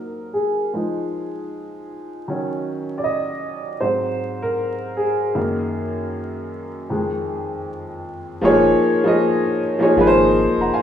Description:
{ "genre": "lo-fi hip hop", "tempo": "78 BPM", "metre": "4/4", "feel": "swing 59% on 16ths", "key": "Eb dorian", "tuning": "A4 = 440 Hz", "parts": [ { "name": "clear upright piano", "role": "accompaniment", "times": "0.0-10.8 s", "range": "F2 to Bb5", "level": "-18 LUFS", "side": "equal", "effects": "cassette tape, low-pass filter" }, { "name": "saturated sub bass", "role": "bass", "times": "8.4-10.7 s", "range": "Eb1 to Ab1", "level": "-27 LUFS", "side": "equal", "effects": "none" } ], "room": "moderate lush hall reverb, RT60 2.2 s", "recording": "rough home demo mix, vinyl crackle, studio reverb", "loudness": "-18 LUFS", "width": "side -9 dB against mid", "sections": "0.0-8.4 A section; 8.4-10.8 B section", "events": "upright piano solo 0.0-8.4; filter sweep on upright piano 0.0-8.4", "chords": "0.0 Gb6; 0.7 Fm7; 2.3 Ebm7; 3.8 Ab7; 5.3 Gb69; 6.9 Fm7; 8.4 Eb5; 10.0 Ab", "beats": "0.73 1.50 | 2.27 3.04 3.81 4.58 | 5.35 6.12 6.89 7.66 | 8.42 9.19 9.96 10.73" }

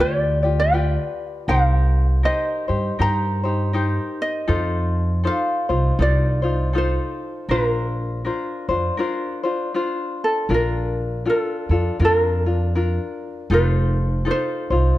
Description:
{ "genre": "Hawaiian", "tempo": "80 BPM", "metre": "4/4", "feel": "swing 60% on 8ths", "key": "Bb major", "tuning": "A4 = 440 Hz", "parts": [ { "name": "ukulele", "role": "melody", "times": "0.0-15.0 s", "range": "A4 to Bb5", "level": "-23 LUFS", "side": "right 1 dB", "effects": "none" }, { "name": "tenor ukulele", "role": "accompaniment", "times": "0.0-15.0 s", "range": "D4 to D5", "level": "-24 LUFS", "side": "left 3 dB", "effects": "none" }, { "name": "upright bass", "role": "bass", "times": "0.0-14.9 s", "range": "F1 to G2", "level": "-20 LUFS", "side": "equal", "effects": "none" } ], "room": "light reverb", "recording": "dark, warm production", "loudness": "-18 LUFS", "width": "side -15 dB against mid", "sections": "0.0-10.5 A section; 10.5-15.0 A section", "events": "none", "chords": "0.0 G7; 1.5 Cm7; 4.5 F7; 7.5 Bbadd9; 10.5 Bbmaj7; 13.5 F7", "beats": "0.73 | 1.48 2.23 2.98 3.73 | 4.49 5.24 5.99 6.74 | 7.49 8.24 9.00 9.75 | 10.50 11.25 12.00 12.75 | 13.50 14.26" }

